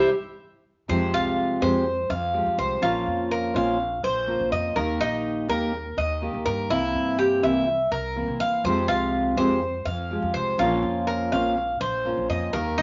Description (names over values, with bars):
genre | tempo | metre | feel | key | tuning
latin | 124 BPM | 4/4 | straight | F minor | A4 = 439 Hz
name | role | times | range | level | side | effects
fingerpicked steel-string acoustic guitar | accompaniment | 0.0-12.8 s | C3 to C5 | -28 LUFS | equal | none
Cuban tres | arpeggios | 0.0-12.8 s | Eb4 to F5 | -27 LUFS | equal | none
upright bass | bass | 0.0-12.8 s | Bb1 to G2 | -34 LUFS | equal | none
room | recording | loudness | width
moderate studio reverb, RT60 0.9 s | nothing above 7.5 kHz | -25 LUFS | mono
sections
0.9-12.8 A section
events
band accent 0.0-0.9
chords
0.0 C; 0.9 Fmadd9; 2.8 Bbmadd9; 4.8 Eb; 6.7 C7; 8.6 Fmadd9; 10.6 Bbmadd9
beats
0.42 | 0.90 1.38 1.86 2.35 | 2.83 3.31 3.80 4.28 | 4.76 5.25 5.73 6.22 | 6.70 7.19 7.67 8.16 | 8.64 9.13 9.62 10.10 | 10.59 11.08 11.56 12.05 | 12.54